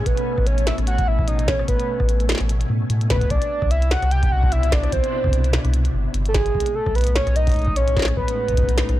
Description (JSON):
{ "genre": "IDM", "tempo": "148 BPM", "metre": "4/4", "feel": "swing 56% on 16ths", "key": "unclear", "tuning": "A4 = 439 Hz", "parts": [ { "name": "warbly nostalgic lead", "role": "melody", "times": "0.0-9.0 s", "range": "G#4 to G5", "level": "-24 LUFS", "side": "equal", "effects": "chorus, analog delay" }, { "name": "soft string machine", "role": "sustained chords", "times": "0.0-9.0 s", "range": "A2 to G#5", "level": "-29 LUFS", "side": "left 1 dB", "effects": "ensemble chorus" }, { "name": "round analog bass", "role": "bass", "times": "0.1-9.0 s", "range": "G1 to A2", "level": "-20 LUFS", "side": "equal", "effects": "none" }, { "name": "electronic kick drum", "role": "drums", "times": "0.1-8.7 s", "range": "none", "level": "-23 LUFS", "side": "equal", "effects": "none" }, { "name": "glitchy drum kit", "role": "drums", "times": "0.1-9.0 s", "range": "hi-hat, rim click, snare drum", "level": "-27 LUFS", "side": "equal", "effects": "none" } ], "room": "digital ambience", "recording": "dry, gritty hardware recording, transformer saturation", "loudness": "-17 LUFS", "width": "side -14 dB against mid", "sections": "0.0-9.0 A section", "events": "none", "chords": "0.0 Amaj9; 3.3 Cmaj9; 6.5 B13", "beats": "| 0.06 0.47 0.87 1.28 | 1.68 2.09 2.49 2.90 | 3.30 3.71 4.12 4.52 | 4.93 5.33 5.74 6.14 | 6.55 6.95 7.36 7.76 | 8.17 8.57 8.98" }